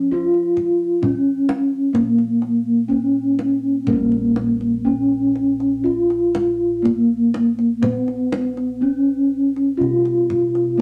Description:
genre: Javanese gamelan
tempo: 61-68 BPM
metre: 4/4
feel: straight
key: unclear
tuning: A4 = 440 Hz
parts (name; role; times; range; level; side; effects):
- gamelan-type bronze metallophone; melody; 0.0-10.8 s; Bb3 to F4; -19 LUFS; equal; none
- gamelan-type bossed gongs; bass; 0.0-10.8 s; Bb1 to Cb5+35c; -31 LUFS; equal; none
- kendang; percussion; 0.3-10.7 s; none; -30 LUFS; equal; none
room: moderate studio reverb, RT60 0.6 s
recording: none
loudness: -19 LUFS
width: mono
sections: 0.0-3.9 A section; 3.9-10.8 B section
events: none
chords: none

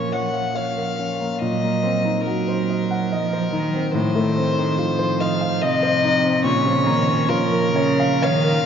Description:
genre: classical, slow romantic movement for piano trio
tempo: 71 BPM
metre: 3/4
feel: rubato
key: Bb minor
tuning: A4 = 439 Hz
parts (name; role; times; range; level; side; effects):
- rich violin; melody; 0.0-8.7 s; Bb4 to Gb5; -23 LUFS; left 3 dB; none
- warm cello; second line; 0.0-8.6 s; C3 to Gb3; -23 LUFS; right 3 dB; none
- warm grand piano; accompaniment; 0.0-8.7 s; A2 to Gb5; -22 LUFS; left 1 dB; none
room: wet cathedral reverb, RT60 5.7 s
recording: in a vast, echoing space, nothing above 7.5 kHz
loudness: -18 LUFS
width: side -8 dB against mid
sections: 0.0-8.7 A section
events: none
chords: 0.0 Bbm; 1.4 Cm7b5/Bb; 3.9 F7/A; 6.5 Bbm

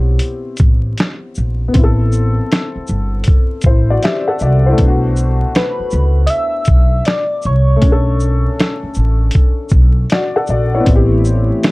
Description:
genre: lo-fi hip hop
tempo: 79 BPM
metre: 4/4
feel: swing 64% on 16ths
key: unclear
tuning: A4 = 442 Hz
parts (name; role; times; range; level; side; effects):
- warm upright piano; accompaniment; 0.0-11.7 s; A3 to F#5; -19 LUFS; left 2 dB; cassette tape, low-pass filter
- upright bass; bass; 0.0-11.5 s; G1 to C#2; -14 LUFS; equal; none
- boom bap sampler-style drum kit; drums; 0.2-11.7 s; hi-hat, kick drum, shaker, snare drum; -13 LUFS; equal; none
- soft struck synth lead; melody; 5.6-8.9 s; B4 to E5; -19 LUFS; equal; chorus, low-pass filter
- warm analog pad; sustained chords; 10.9-11.7 s; E3 to E4; -20 LUFS; right 1 dB; chorus, low-pass filter
room: light reverb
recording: dark, warm production, vinyl crackle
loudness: -11 LUFS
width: side -22 dB against mid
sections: 0.0-11.7 A section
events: break 0.0-1.8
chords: 0.0 Am9; 4.8 Bm9; 10.9 Am9

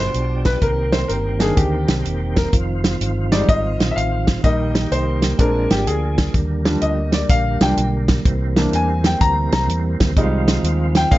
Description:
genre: uptempo gospel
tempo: 126 BPM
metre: 4/4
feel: swing 66% on 8ths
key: unclear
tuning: A4 = 440 Hz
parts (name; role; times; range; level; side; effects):
- clear grand piano; accompaniment; 0.0-11.2 s; B2 to Bb5; -21 LUFS; left 1 dB; none
- tonewheel organ; sustained chords; 0.0-11.2 s; B2 to Ab4; -25 LUFS; right 3 dB; slow rotary speaker, chorus vibrato
- fingered electric bass; bass; 0.0-11.2 s; Fb1 to E2; -21 LUFS; equal; none
- warm soul drum kit; drums; 0.1-11.2 s; hi-hat, kick drum, snare drum; -18 LUFS; right 1 dB; none
room: light reverb, small room ambience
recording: nothing above 7.6 kHz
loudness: -16 LUFS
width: side -16 dB against mid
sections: 0.0-11.2 A section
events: grand piano solo 0.0-11.2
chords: 0.0 G7; 0.6 Cm7; 2.5 Fm7; 4.4 Eb/Bb; 5.4 Bb7; 6.3 Ebmaj7; 8.3 C7; 10.2 Fm7/C

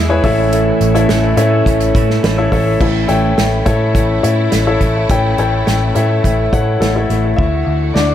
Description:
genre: piano-driven pop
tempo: 105 BPM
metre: 4/4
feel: straight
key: unclear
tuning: A4 = 440 Hz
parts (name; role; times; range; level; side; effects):
- clear grand piano; accompaniment; 0.0-8.1 s; A2 to G5; -15 LUFS; left 3 dB; dub echo
- clear studio string section; sustained chords; 0.0-8.1 s; D3 to B4; -25 LUFS; right 1 dB; none
- twelve-string electric guitar; riff; 0.0-3.3 s; A2 to E4; -20 LUFS; right 7 dB; dub echo
- vintage muted picked electric bass; bass; 0.0-8.1 s; A1 to A2; -16 LUFS; equal; none
- unplugged drum kit; drums; 0.2-8.1 s; crash cymbal, hi-hat, kick drum, snare drum; -18 LUFS; right 1 dB; dub echo
room: light reverb, small room ambience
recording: echo-heavy mix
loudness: -11 LUFS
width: side -11 dB against mid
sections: 0.0-2.8 A section; 2.8-7.4 B section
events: none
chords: 0.2 A; 7.4 Dadd9

